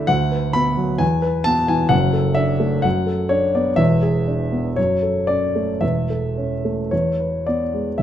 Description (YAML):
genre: classical, romantic character piece for solo piano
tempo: 54-66 BPM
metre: 2/4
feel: rubato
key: unclear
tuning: A4 = 439 Hz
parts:
  - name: warm grand piano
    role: solo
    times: 0.0-8.0 s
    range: A0 to B5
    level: -17 LUFS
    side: equal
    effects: none
room: moderate recital hall reverb, RT60 1.3 s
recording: close, detailed microphones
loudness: -17 LUFS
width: side -10 dB against mid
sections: 0.0-8.0 A section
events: none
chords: 0.1 Bm/D; 1.0 E; 1.9 D/F#; 2.8 Bm7/F#; 3.8 E7; 4.8 F#m; 5.8 A/E; 6.9 E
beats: | 0.09 1.01 | 1.93 2.85 | 3.79 4.77 | 5.82 6.92 | 7.98